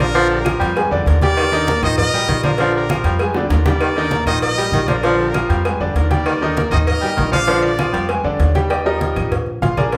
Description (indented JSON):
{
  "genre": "latin, salsa",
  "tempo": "196 BPM",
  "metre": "4/4",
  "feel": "straight",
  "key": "unclear",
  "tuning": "A4 = 439 Hz",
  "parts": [
    { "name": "bright trumpet section", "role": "melody", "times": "0.0-8.1 s", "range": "F4 to F5", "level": "-24 LUFS", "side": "equal", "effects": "none" },
    { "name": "warm baritone saxophone", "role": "second line", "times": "0.0-8.4 s", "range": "D3 to G3", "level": "-23 LUFS", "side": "equal", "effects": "none" },
    { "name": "bright grand piano", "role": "accompaniment", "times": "0.0-10.0 s", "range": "D3 to Eb6", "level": "-23 LUFS", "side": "equal", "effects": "none" },
    { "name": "upright bass", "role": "bass", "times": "0.0-10.0 s", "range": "Bb1 to F2", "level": "-23 LUFS", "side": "equal", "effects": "none" },
    { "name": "cowbell and bongos", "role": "percussion", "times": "0.0-10.0 s", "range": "none", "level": "-28 LUFS", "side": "equal", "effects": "none" },
    { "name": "congas", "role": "percussion", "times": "0.1-10.0 s", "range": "none", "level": "-26 LUFS", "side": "equal", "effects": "none" },
    { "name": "claves", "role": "percussion", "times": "0.4-9.9 s", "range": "none", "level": "-37 LUFS", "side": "equal", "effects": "none" }
  ],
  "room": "wet large studio reverb, RT60 0.8 s",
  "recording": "band playing live in one room",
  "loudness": "-17 LUFS",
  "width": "mono",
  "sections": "0.0-8.7 A section; 8.7-10.0 B section",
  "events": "drum fill 3.4-3.8; grand piano solo 8.7-10.0",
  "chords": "0.1 Bb7; 1.4 Ebmaj7; 2.6 Bb7; 3.8 Ebmaj7; 5.0 Bb7; 6.3 Ebmaj7; 7.5 Bb7"
}